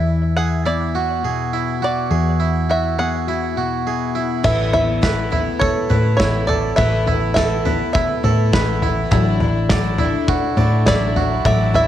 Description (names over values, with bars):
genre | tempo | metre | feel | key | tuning
indie folk with a building arrangement | 103 BPM | 4/4 | straight | unclear | A4 = 439 Hz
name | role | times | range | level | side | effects
bluegrass banjo | melody | 0.0-11.9 s | C#5 to F#5 | -22 LUFS | equal | analog delay
fingerpicked steel-string acoustic guitar | accompaniment | 0.0-6.8 s | B2 to F#4 | -26 LUFS | left 8 dB | cassette tape
harpsichord | arpeggios | 0.0-11.9 s | E4 to D5 | -23 LUFS | right 9 dB | cassette tape
hollow-body short-scale picked electric bass | bass | 0.0-11.9 s | A1 to A2 | -20 LUFS | equal | none
picked twelve-string acoustic guitar | accompaniment | 4.4-11.9 s | A2 to E4 | -23 LUFS | left 8 dB | cassette tape
loose indie drum kit | drums | 4.4-11.9 s | crash cymbal, kick drum, snare drum, toms | -21 LUFS | equal | none
room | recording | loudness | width
small room ambience | home recording on cassette | -16 LUFS | side -11 dB against mid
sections
0.0-4.5 A section; 4.5-11.9 B section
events
none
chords
0.0 Eadd9; 4.5 Asus2; 9.1 Dadd9/A